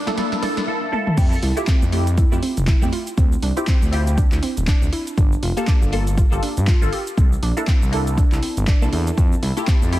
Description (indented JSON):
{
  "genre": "deep house",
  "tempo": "120 BPM",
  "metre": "4/4",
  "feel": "swing 58% on 16ths",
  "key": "unclear",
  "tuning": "A4 = 440 Hz",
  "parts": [
    { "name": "analog string pad", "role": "texture", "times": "0.0-0.7, 9.4-10.0 s", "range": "A5", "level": "-43 LUFS", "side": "left 1 dB", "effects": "none" },
    { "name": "filtered dub chord stab", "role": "stabs", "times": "0.1-10.0 s", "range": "A3 to A4", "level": "-26 LUFS", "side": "equal", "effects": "phaser, analog chorus, sidechain pumping, digital delay" },
    { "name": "punchy analog drum machine", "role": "drums", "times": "0.1-10.0 s", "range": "crash cymbal, handclaps, hi-hat, shaker, snare drum, toms", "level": "-28 LUFS", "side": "equal", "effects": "none" },
    { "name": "warbly dusty pluck", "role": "arpeggios", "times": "0.2-9.7 s", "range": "C4 to G4", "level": "-28 LUFS", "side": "right 2 dB", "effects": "chorus, cassette tape, sidechain pumping, digital delay" },
    { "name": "smooth gliding synth bass", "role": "bass", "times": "1.2-10.0 s", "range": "D1 to G2", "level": "-21 LUFS", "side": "equal", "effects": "sidechain pumping" },
    { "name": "electronic kick drum", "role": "drums", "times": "1.2-9.8 s", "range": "none", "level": "-17 LUFS", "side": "equal", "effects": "overdrive" }
  ],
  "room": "light reverb, digital ambience",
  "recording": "dense, heavily limited modern master, vinyl crackle",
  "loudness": "-16 LUFS",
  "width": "side -15 dB against mid",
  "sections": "0.0-1.2 A section; 1.2-10.0 B section",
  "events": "build-up 0.0-1.2; drum fill 0.0-0.7, 0.9; filter sweep on synth stab 0.0-1.2; filter sweep on synth pluck 0.0-1.2; drop 1.2-10.0",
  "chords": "0.0 Bbmaj7#11; 1.2 Fmaj9; 3.2 Dm11; 5.2 Gm9; 7.2 C13; 9.2 Fmaj9",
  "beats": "0.17 0.68 | 1.18 1.68 2.17 2.67 | 3.17 3.67 4.17 4.67 | 5.17 5.67 6.17 6.67 | 7.17 7.67 8.18 8.68 | 9.18 9.68"
}